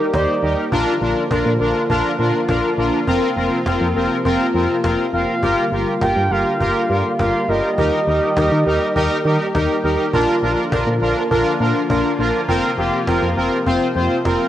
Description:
synth-pop; 102 BPM; 4/4; straight; A4 = 436 Hz
expressive portamento lead; melody; 0.0-0.5, 5.1-9.8 s; D5 to G5; -23 LUFS; right 2 dB; chorus, cassette tape, shimmer reverb, analog delay
analog synth brass; accompaniment; 0.0-14.5 s; C4 to C5; -18 LUFS; equal; chorus, cassette tape, shimmer reverb
sweeping resonant pad; sustained chords; 0.0-14.5 s; C3 to G4; -24 LUFS; left 1 dB; chorus, cassette tape, shimmer reverb
solid FM bass; bass; 0.1-14.4 s; F1 to Eb3; -22 LUFS; equal
cajon; drums; 0.1-14.4 s; -26 LUFS; equal
moderate lush hall reverb, RT60 2.1 s; home recording on cassette; -16 LUFS; side -12 dB against mid
0.0-14.5 A section
0.0 Eb; 0.7 Bb; 3.1 Fsus4; 5.4 Gm7; 7.8 Eb; 10.1 Bb; 12.5 Fsus4
0.13 | 0.72 1.31 1.90 2.49 | 3.07 3.66 4.25 4.84 | 5.43 6.01 6.60 7.19 | 7.78 8.37 8.96 9.54 | 10.13 10.72 11.31 11.90 | 12.49 13.07 13.66 14.25

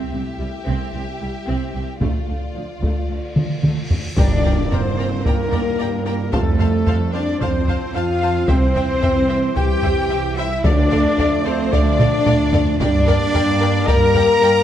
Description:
cinematic, epic orchestral film score; 111 BPM; 4/4; straight; G dorian; A4 = 442 Hz
rich symphonic violin section; melody; 0.0-14.6 s; A4 to Bb5; -29 LUFS; left 3 dB
rich symphonic violin section; second line; 0.0-14.5 s; F4 to Bb5; -32 LUFS; left 3 dB
rich symphonic viola section; accompaniment; 0.0-14.5 s; F3 to F5; -30 LUFS; right 1 dB
dark French horn section; sustained chords; 0.0-14.6 s; G3 to Bb4; -22 LUFS; left 4 dB
clear symphonic cello section; bass; 0.1-14.6 s; C2 to Bb4; -27 LUFS; right 4 dB
rich symphonic double bass section; bass; 0.1-14.6 s; C2 to G2; -24 LUFS; right 3 dB
taiko ensemble; drums; 2.0-14.4 s; -19 LUFS; equal
cymbal swell and impact; sound effects; 3.6-6.3 s; -30 LUFS; equal
silver concert flute; second line; 4.2-14.6 s; A4 to Bb5; -30 LUFS; left 3 dB
clear trombone section; sustained chords; 4.2-14.6 s; E3 to C4; -28 LUFS; right 4 dB
warm trumpet; stabs; 4.2-14.6 s; A4 to Bb5; -26 LUFS; right 1 dB
tam-tam; percussion; 4.2-6.3 s; -34 LUFS; left 3 dB
timpani; percussion; 4.2-4.9, 10.6-11.4 s; G2 to D3; -27 LUFS; left 1 dB
moderate scoring stage reverb, RT60 2.0 s; dark, warm production; -16 LUFS; side -10 dB against mid
0.0-4.2 A section; 4.2-14.6 B section
drum fill 3.4-4.2, 12.0-12.8; cymbal swell 3.6-4.2; band accent 4.2-4.7; impact 4.2-6.3
0.0 C; 2.0 Dm; 4.2 Gm; 6.3 F; 8.5 C; 10.6 Dm; 12.8 Gm
0.39 0.94 1.48 | 2.02 2.56 3.10 3.64 | 4.18 4.72 5.26 5.80 | 6.34 6.88 7.41 7.95 | 8.49 9.03 9.57 10.11 | 10.65 11.19 11.73 12.27 | 12.81 13.35 13.88 14.42

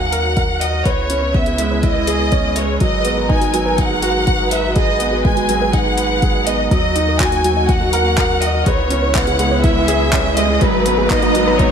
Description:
piano and strings electronica; 123 BPM; 4/4; straight; G# minor; A4 = 440 Hz
rich studio violin section; melody; 0.0-11.7 s; B4 to G#5; -19 LUFS; equal
dark studio string section; sustained chords; 0.0-11.7 s; C#3 to A#5; -24 LUFS; equal; sidechain pumping
warbly dusty pluck; arpeggios; 0.0-11.6 s; F#4 to A#5; -28 LUFS; right 4 dB
clear upright piano; riff; 0.0-11.7 s; F#3 to F#5; -20 LUFS; right 2 dB; tape echo
warm sub bass; bass; 0.0-11.7 s; G#1 to D#2; -23 LUFS; equal; sidechain pumping
deep house drum kit; drums; 0.1-11.7 s; handclaps, hi-hat; -24 LUFS; left 1 dB
electronic kick drum; drums; 0.4-11.7 s; -18 LUFS; equal
riser; sound effects; 8.3-11.7 s; -24 LUFS; equal
light reverb, digital ambience; -13 LUFS; side -7 dB against mid
0.0-11.7 A section
build-up 0.0-11.7; riser 8.3-11.7
0.0 D#m; 0.9 C#m7; 2.8 G#m7; 6.7 D#m; 8.7 C#m7; 10.6 G#m7
0.38 | 0.86 1.35 1.84 2.33 | 2.81 3.30 3.79 4.28 | 4.77 5.25 5.74 6.23 | 6.72 7.21 7.69 8.18 | 8.67 9.16 9.64 10.13 | 10.62 11.11 11.60

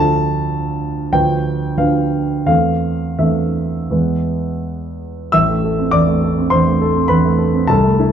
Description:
classical, romantic character piece for solo piano; 82-104 BPM; 4/4; rubato; A minor; A4 = 440 Hz
warm concert grand piano; solo; 0.0-8.1 s; A1 to E6; -14 LUFS; right 1 dB
light reverb; dark, warm production; -14 LUFS; side -8 dB against mid
0.0-5.3 A section; 5.3-8.1 B section
0.0 Dm; 1.1 Bdim/D; 2.5 Am/E; 3.9 E; 5.3 Am
0.53 1.14 1.79 | 2.48 3.20 3.92 4.65 | 5.34 5.93 6.52 7.10 | 7.69

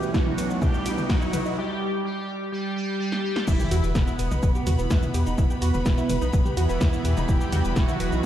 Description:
melodic techno; 126 BPM; 4/4; straight; E minor; A4 = 440 Hz
resonant sweep polysynth; melody; 0.0-8.3 s; B2 to G4; -28 LUFS; equal; chorus, phaser, vintage 12-bit sampler grit, sidechain pumping, tape echo
warm studio string section; sustained chords; 0.0-8.3 s; E2 to B5; -38 LUFS; left 2 dB; sidechain pumping
analog pluck; arpeggios; 0.0-8.3 s; B3 to B4; -33 LUFS; right 2 dB; chorus, phaser, sidechain pumping, tape echo
brassy analog pad; stabs; 0.0-1.0, 4.8-8.3 s; E3 to E4; -32 LUFS; right 4 dB; chorus, sidechain pumping, tape echo
punchy analog drum machine; drums; 0.0-8.2 s; crash cymbal, hi-hat, shaker, snare drum, toms; -31 LUFS; left 1 dB
riser and impact; sound effects; 0.0-5.4 s; -34 LUFS; equal
electronic kick drum; drums; 0.1-8.3 s; -23 LUFS; equal
rich studio violin section; second line; 3.5-8.3 s; B3 to G4; -35 LUFS; right 1 dB; sidechain pumping, tape echo
round analog bass; bass; 3.5-8.3 s; E1 to E2; -25 LUFS; equal; sidechain pumping
swarming drone; drone; 5.3-8.3 s; E2 to E3; -42 LUFS; equal
light reverb, digital ambience; played on a big sound system in a bare room, stone room reverb; -21 LUFS; side -11 dB against mid
0.0-3.5 A section; 3.5-8.3 B section
build-up 0.0-3.5; riser 0.0-1.6; filter sweep on synth arpeggio sound 0.0-3.5; break 1.6-3.5; drum fill 3.1-3.5; drop 3.5-8.3; impact 3.5-5.4
0.0 Em
0.14 0.62 1.09 | 1.57 2.05 2.52 3.00 | 3.48 3.95 4.43 4.91 | 5.38 5.86 6.33 6.81 | 7.29 7.76 8.24

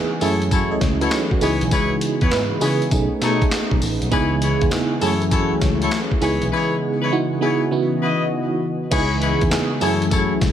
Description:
R&B, new jack swing; 100 BPM; 4/4; swing 66% on 16ths; C# minor; A4 = 439 Hz
FM electric piano with tremolo; accompaniment; 0.0-10.5 s; C#3 to D#5; -23 LUFS; right 3 dB; phaser
warm analog pad; sustained chords; 0.0-10.5 s; C#3 to D#5; -24 LUFS; left 1 dB; chorus
warm horn section; stabs; 0.2-10.3 s; D#4 to D#5; -25 LUFS; left 4 dB; digital delay
bell-like tine electric piano; bass; 0.2-10.5 s; A1 to C#3; -24 LUFS; equal; fast stereo tremolo
boom bap sampler-style drum kit; drums; 0.2-10.5 s; crash cymbal, handclaps, hi-hat, kick drum, snare drum, tambourine; -22 LUFS; equal; gated reverb
digital ambience; -17 LUFS; side -10 dB against mid
0.0-8.9 A section; 8.9-10.5 A section
0.2 F#m7; 1.4 C#m7; 2.9 B13; 4.1 C#m7; 5.0 F#m7; 6.2 C#m7; 7.7 C#m11; 8.9 C#m7; 9.8 F#m7
0.52 1.12 | 1.72 2.32 2.92 3.52 | 4.12 4.72 5.32 5.92 | 6.52 7.12 7.72 8.32 | 8.92 9.52 10.12

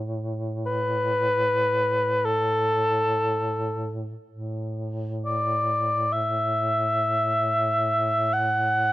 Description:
caucasian folk, Caucasian lament; free time; A4 = 441 Hz
mellow duduk; drone; 0.0-8.9 s; A2; -30 LUFS; right 1 dB; stereo widening
mellow cor anglais; melody; 0.7-8.9 s; A4 to F#5; -22 LUFS; left 1 dB
small room ambience; dry, close 1970s-style studio recording; -22 LUFS; side -16 dB against mid
0.0-4.3 A section; 4.3-8.9 A section
free time

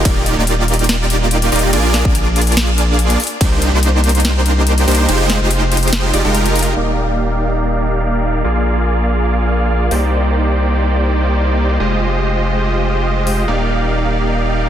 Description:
future bass; 143 BPM; 4/4; half-time; A4 = 440 Hz
supersaw chords; riff; 0.0-14.7 s; Ab3 to F5; -16 LUFS; right 1 dB; sidechain pumping, low-pass filter, ping-pong delay
saturated sub bass; bass; 0.0-14.7 s; Eb1 to C2; -16 LUFS; equal; sidechain pumping
electronic kick drum; drums; 0.1-3.5 s; -15 LUFS; equal
trap drum kit; drums; 0.1-6.7, 9.9-10.0, 13.3-13.4 s; hi-hat, ride cymbal, snare drum; -20 LUFS; left 1 dB; overdrive
light reverb; dense, heavily limited modern master; -13 LUFS; side -10 dB against mid
0.0-6.8 A section; 6.8-14.7 B section
drop 0.0-6.8; kick drops out 5.1-6.8; filter sweep on supersaw synth 6.8-14.7
0.1 Ebmaj9; 1.7 Bb7; 3.2 Cm9; 5.1 Fm9; 6.8 Ebmaj9; 8.4 Bb7; 9.9 Cm9; 11.8 Fm9; 13.5 Ebmaj9
| 0.05 0.47 0.89 1.31 | 1.73 2.15 2.57 2.99 | 3.41 3.83 4.25 4.67 | 5.09 5.51 5.93 6.34 | 6.76 7.18 7.60 8.02 | 8.44 8.86 9.28 9.70 | 10.12 10.54 10.96 11.38 | 11.80 12.22 12.64 13.06 | 13.48 13.90 14.32

